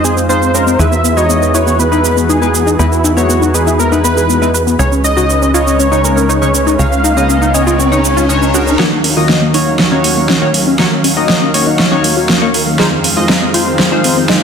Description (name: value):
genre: progressive house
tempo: 120 BPM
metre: 4/4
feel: straight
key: unclear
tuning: A4 = 438 Hz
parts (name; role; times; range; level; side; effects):
- wide unison lead; melody; 0.0-8.5 s; E4 to F5; -16 LUFS; right 1 dB; ping-pong delay
- supersaw pad; sustained chords; 0.0-14.4 s; Eb2 to F5; -18 LUFS; right 2 dB; none
- tight sequenced synth; arpeggios; 0.0-14.4 s; Bb3 to B4; -16 LUFS; left 3 dB; chorus, cassette tape, dub echo
- chorused polysynth; stabs; 0.0-14.4 s; Db3 to Eb5; -16 LUFS; left 2 dB; dub echo
- tight sequencer bass; bass; 0.0-8.8 s; Db2 to F2; -16 LUFS; equal; none
- big-room dance drum kit; drums; 0.0-14.4 s; hi-hat, shaker, snare drum; -15 LUFS; right 2 dB; none
- riser; sound effects; 6.5-8.8 s; none; -20 LUFS; right 1 dB; none
room: moderate lush hall reverb, RT60 2.4 s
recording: dense, heavily limited modern master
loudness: -9 LUFS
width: side -7 dB against mid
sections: 0.0-8.8 A section; 8.8-14.4 B section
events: filter sweep on synth arpeggio sound 0.0-8.8; riser 6.5-8.8; build-up 8.8-14.4; drum fill 8.8-14.4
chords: 0.0 Fm7; 0.8 Emaj7; 4.8 Dbsus2; 8.8 Ebm7; 12.8 Fm7